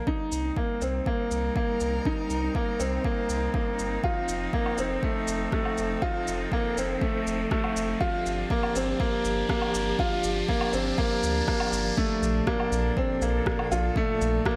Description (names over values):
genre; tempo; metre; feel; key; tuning
piano and strings electronica; 121 BPM; 4/4; straight; C dorian; A4 = 442 Hz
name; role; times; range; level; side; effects
warm string quartet; sustained chords; 0.0-14.6 s; Bb2 to Bb4; -35 LUFS; equal; sidechain pumping
riser; sound effects; 2.3-12.0 s; none; -41 LUFS; equal; none
clear grand piano; riff; 0.1-14.6 s; A3 to F4; -30 LUFS; equal; tape echo
electronic kick drum; drums; 0.1-14.6 s; none; -32 LUFS; equal; overdrive
warm sub bass; bass; 0.3-14.4 s; F1 to D2; -33 LUFS; equal; sidechain pumping
electronic shaker, woodblock and rim click; drums; 0.3-14.6 s; none; -37 LUFS; equal; high-pass filter on perc, high-pass filter on snare, high-pass filter on room
room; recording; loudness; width
moderate echo chamber reverb, RT60 1.5 s; none; -27 LUFS; mono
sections
0.0-12.0 A section; 12.0-14.6 B section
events
build-up 0.0-12.0; riser 2.3-12.0; drop 12.0-14.6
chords
0.1 Cm7; 4.0 F7; 8.0 G7sus4; 12.0 Bbmaj7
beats
| 0.07 0.57 1.07 1.56 | 2.06 2.55 3.05 3.55 | 4.04 4.54 5.03 5.53 | 6.03 6.52 7.02 7.51 | 8.01 8.51 9.00 9.50 | 9.99 10.49 10.98 11.48 | 11.98 12.47 12.97 13.46 | 13.96 14.46